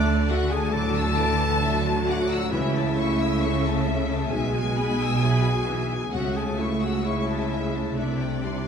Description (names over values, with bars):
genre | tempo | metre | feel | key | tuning
cinematic, emotional film score for orchestra | 66 BPM | 4/4 | rubato | A major | A4 = 439 Hz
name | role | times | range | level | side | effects
clear studio violin section | melody | 0.0-8.7 s | E5 to E6 | -34 LUFS | left 5 dB | none
rich studio violin section | second line | 0.0-8.7 s | D5 to A5 | -30 LUFS | left 3 dB | none
warm clarinet | second line | 0.0-8.7 s | D4 to A4 | -30 LUFS | equal | none
felt-muted upright piano | accompaniment | 0.0-8.7 s | B1 to E5 | -30 LUFS | left 1 dB | none
rich studio viola section | accompaniment | 0.0-8.7 s | E3 to A3 | -31 LUFS | right 2 dB | none
rich studio cello section | bass | 0.0-8.7 s | B2 to D3 | -28 LUFS | right 2 dB | none
warm studio double bass section | bass | 0.0-8.7 s | B1 to D2 | -29 LUFS | right 2 dB | none
room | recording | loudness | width
wet concert hall reverb, RT60 1.9 s | minimal, uncompressed stereo recording | -22 LUFS | side -7 dB against mid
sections
0.0-8.7 A section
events
none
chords
0.0 Dsus2; 2.5 A/C#; 4.3 E/B; 6.1 A/C#; 8.0 Cadd9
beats
0.74 1.63 | 2.52 3.41 4.32 5.22 | 6.13 7.04 7.96